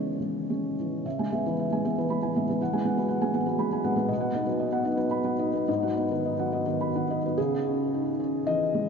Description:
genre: neoclassical minimalist piano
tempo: 101-121 BPM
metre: 3/4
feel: rubato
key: C# minor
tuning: A4 = 439 Hz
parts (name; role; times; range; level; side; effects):
- felt-muted upright piano; solo; 0.0-8.9 s; G#2 to B5; -25 LUFS; equal; none
room: wet cathedral reverb, RT60 6.4 s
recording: recorded in a church or concert hall, nothing above 7.5 kHz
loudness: -25 LUFS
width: side -6 dB against mid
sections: 0.0-1.0 A section; 1.0-7.4 B section; 7.4-8.9 C section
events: none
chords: 0.0 C#m; 1.0 C#m7; 2.6 Eadd9; 4.1 B; 5.7 G#m7; 7.4 C#m

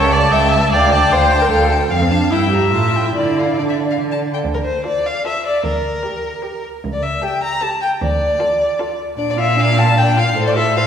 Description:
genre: quick classical-period movement for string quartet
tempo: 152 BPM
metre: 3/4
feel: rubato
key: D minor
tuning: A4 = 440 Hz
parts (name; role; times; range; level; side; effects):
- rich violin; melody; 0.0-10.9 s; A4 to Bb5; -24 LUFS; left 6 dB; none
- rich violin; second line; 0.0-10.8 s; Bb4 to Bb5; -18 LUFS; left 2 dB; none
- warm viola; accompaniment; 0.0-10.9 s; C4 to E5; -20 LUFS; right 2 dB; none
- warm cello; bass; 0.0-10.9 s; C#2 to D3; -18 LUFS; right 2 dB; none
room: wet concert hall reverb, RT60 2.0 s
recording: heard from further back in the room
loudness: -14 LUFS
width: side -8 dB against mid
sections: 0.0-4.4 A section; 4.4-10.9 B section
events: none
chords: 0.0 A7/C#; 0.7 Dm; 1.9 Dm/F; 2.3 Edim/G; 2.7 A5; 3.2 Dm; 5.6 Gm/D; 6.8 A7/C#; 8.0 Dm; 9.2 Bb

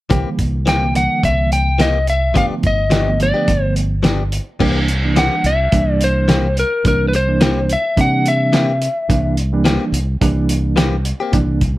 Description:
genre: straight-eighth soul blues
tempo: 107 BPM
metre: 4/4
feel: swing 55% on 16ths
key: C mixolydian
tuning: A4 = 445 Hz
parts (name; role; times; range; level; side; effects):
- bright reed electric piano; accompaniment; 0.1-11.6 s; D3 to D4; -21 LUFS; right 3 dB; tremolo
- direct-recorded clean electric guitar; stabs; 0.1-11.4 s; E3 to G4; -21 LUFS; left 4 dB; none
- fingered electric bass; bass; 0.1-11.8 s; G1 to C3; -18 LUFS; equal; none
- cloth-damped thuddy drum kit; drums; 0.1-11.8 s; crash cymbal, hi-hat, kick drum, snare drum; -19 LUFS; equal; none
- lightly driven lead guitar; melody; 0.7-9.3 s; Bb4 to G5; -18 LUFS; left 2 dB; none
room: light reverb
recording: none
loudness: -14 LUFS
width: side -17 dB against mid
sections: 0.1-4.6 A section; 4.6-11.8 B section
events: none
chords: 0.1 C7; 2.4 G7; 4.6 C7

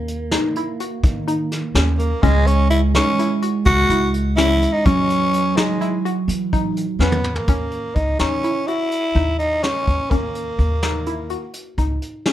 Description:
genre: progressive instrumental, band music in an uneven meter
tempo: 251 BPM (eighths)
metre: 11/8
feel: straight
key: unclear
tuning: A4 = 439 Hz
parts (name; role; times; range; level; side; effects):
- clean electric guitar; second line; 0.0-7.2 s; F#3 to Bb3; -23 LUFS; right 5 dB; phaser
- upright bass; bass; 0.0-12.0 s; Db2 to E3; -21 LUFS; equal; none
- vintage brush drum kit; drums; 0.1-12.3 s; hi-hat, kick drum, snare drum, toms; -22 LUFS; equal; none
- glassy wavetable pluck; arpeggios; 0.3-12.3 s; Db4 to Gb4; -25 LUFS; left 3 dB; chorus
- growling tenor saxophone; melody; 2.0-11.5 s; G#3 to Gb4; -20 LUFS; equal; digital delay
room: moderate small room reverb, RT60 0.5 s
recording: none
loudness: -17 LUFS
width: side -12 dB against mid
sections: 0.0-7.5 A section; 7.5-12.3 B section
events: drum fill 7.0-7.5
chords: 0.0 Ebm; 2.2 Dbm; 4.9 Eadd9; 7.5 Gb

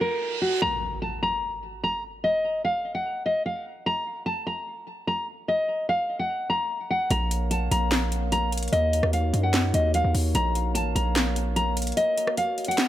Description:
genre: hip hop, trap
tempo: 148 BPM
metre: 4/4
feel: half-time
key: Bb harmonic minor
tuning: A4 = 444 Hz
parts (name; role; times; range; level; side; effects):
- nylon-string guitar; melody; 0.0-12.9 s; Gb4 to Bb5; -25 LUFS; left 1 dB; low-pass filter, digital delay
- reverse cymbal and impact; sound effects; 0.0-2.2 s; none; -34 LUFS; right 2 dB; none
- glass harmonica; sustained chords; 7.1-12.9 s; Bb3 to F5; -32 LUFS; left 1 dB; none
- hard-hitting 808-style bass; bass; 7.1-11.9 s; A1 to Gb2; -25 LUFS; equal; none
- trap drum kit; drums; 7.1-12.9 s; handclaps, hi-hat, rim click, snare drum; -28 LUFS; equal; none
room: light reverb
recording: none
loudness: -23 LUFS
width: side -13 dB against mid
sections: 0.6-12.9 A section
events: break 0.0-0.6; reverse cymbal 0.0-0.6; impact 0.6-2.2; kick muted 12.0-12.9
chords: 0.0 N.C.; 7.1 Bbm; 8.7 Ebm7; 10.3 Bbm; 12.0 Gb

